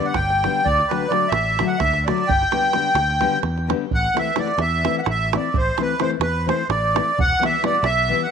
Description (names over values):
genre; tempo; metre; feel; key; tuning
balkan folk, Balkan wedding band; 258 BPM (eighths); 7/8; straight; unclear; A4 = 440 Hz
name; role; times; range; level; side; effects
accordion; melody; 0.0-8.3 s; B4 to G5; -20 LUFS; right 1 dB; light tremolo tuning, tape echo
nylon-string guitar; accompaniment; 0.0-8.2 s; D3 to E4; -26 LUFS; left 14 dB; none
davul; percussion; 0.1-8.0 s; none; -25 LUFS; right 6 dB; none
overdriven fingered electric bass; bass; 0.2-8.1 s; E1 to E2; -25 LUFS; equal; none
room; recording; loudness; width
light reverb; 1960s-style stereo with parts hard left and right; -17 LUFS; side -7 dB against mid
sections
0.0-3.9 A section; 3.9-8.3 B section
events
none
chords
0.0 G; 0.7 D; 2.3 G; 3.9 Am; 7.2 Em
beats
0.20 0.43 | 0.66 0.90 1.13 1.36 1.60 1.83 2.06 | 2.29 2.53 2.76 2.99 3.23 3.46 3.69 | 3.92 4.15 4.39 4.62 4.85 5.08 5.32 | 5.55 5.78 6.01 6.24 6.47 6.71 6.94 | 7.17 7.40 7.63 7.87 8.10